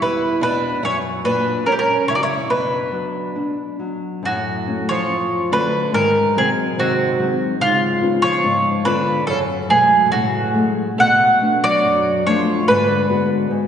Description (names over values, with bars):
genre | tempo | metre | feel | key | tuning
fado-style ballad | 71 BPM | 2/4 | rubato | B harmonic minor, F# harmonic minor from 4.2 s | A4 = 439 Hz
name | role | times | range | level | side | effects
mandolin | melody | 0.0-13.5 s | E#4 to F#5 | -17 LUFS | right 1 dB | none
fingerpicked twelve-string acoustic guitar | second line | 0.0-13.5 s | G#2 to F#4 | -24 LUFS | right 2 dB | none
nylon-string guitar | accompaniment | 0.0-13.7 s | E2 to F#4 | -22 LUFS | left 3 dB | none
room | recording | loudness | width
wet concert hall reverb, RT60 2.3 s | recorded in a church or concert hall, nothing above 10.6 kHz | -15 LUFS | side -8 dB against mid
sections
0.0-4.2 A section; 4.2-13.7 B section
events
none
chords
0.0 Em; 0.8 F#; 2.5 Bm; 4.2 F#m; 5.9 G#7; 7.6 C#7; 9.3 F#madd9; 11.0 Bm7; 12.7 G#m7b5